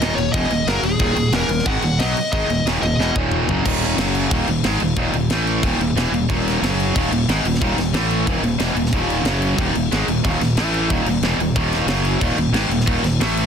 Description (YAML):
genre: heavy metal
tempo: 182 BPM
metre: 4/4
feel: straight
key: Eb phrygian, Eb minor from 3.7 s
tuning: A4 = 444 Hz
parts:
  - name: high-gain lead guitar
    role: melody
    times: 0.0-3.1 s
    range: Ab4 to Gb5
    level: -23 LUFS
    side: left 2 dB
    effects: distortion, ping-pong delay
  - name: distorted electric guitar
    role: riff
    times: 0.0-13.5 s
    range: Eb2 to Cb4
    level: -19 LUFS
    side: equal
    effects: overdrive
  - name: fuzz fingered electric bass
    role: bass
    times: 0.0-13.5 s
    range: Eb1 to Cb2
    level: -23 LUFS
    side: equal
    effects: overdrive
  - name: tight metal drum kit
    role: drums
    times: 0.0-13.4 s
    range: crash cymbal, kick drum, snare drum, toms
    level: -23 LUFS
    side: equal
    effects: soft clipping on kick
room: little or no reverb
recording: dense, heavily limited modern master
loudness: -16 LUFS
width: side -7 dB against mid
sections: 0.0-3.7 A section; 3.7-13.5 B section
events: drum fill 3.0-3.7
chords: 0.0 Ebm; 3.7 Eb5; 4.0 Gb5; 4.3 Eb5; 5.3 A5; 5.6 Eb5; 6.6 Gb5; 7.0 Eb5; 7.9 A5; 8.3 Eb5; 9.3 Gb5; 9.6 Eb5; 10.6 A5; 10.9 Eb5; 11.9 Gb5; 12.2 Eb5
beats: 0.02 0.35 0.68 | 1.01 1.34 1.67 2.00 | 2.33 2.66 2.99 3.32 | 3.65 3.98 4.32 4.65 | 4.98 5.31 5.64 5.97 | 6.30 6.63 6.96 7.29 | 7.62 7.94 8.27 8.60 | 8.93 9.26 9.59 9.91 | 10.24 10.57 10.90 11.23 | 11.56 11.89 12.22 12.55 | 12.88 13.21